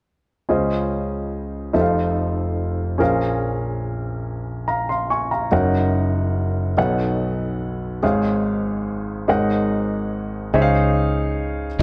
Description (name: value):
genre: gospel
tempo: 48 BPM (dotted quarters)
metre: 6/8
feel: straight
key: Db major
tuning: A4 = 439 Hz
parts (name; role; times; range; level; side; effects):
- warm grand piano; accompaniment; 0.5-11.8 s; F1 to Db6; -22 LUFS; equal; none
- fingered electric bass; bass; 10.5-11.8 s; F1 to Db2; -22 LUFS; equal; none
room: moderate echo chamber reverb, RT60 1.3 s, small room reverb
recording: worn, warbling old tape, cassette tape, warbly pitch drift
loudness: -22 LUFS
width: mono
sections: 0.5-10.5 A section; 10.5-11.8 B section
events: none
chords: 0.5 Dbmaj9; 1.7 F7; 3.0 Bbm9; 5.5 Gb6; 6.8 Cb9; 8.0 Db/Ab; 9.3 Ab9sus4; 10.5 Dbmaj9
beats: | 0.49 1.75 | 3.00 4.26 | 5.52 6.77 | 8.03 9.28 | 10.54 11.79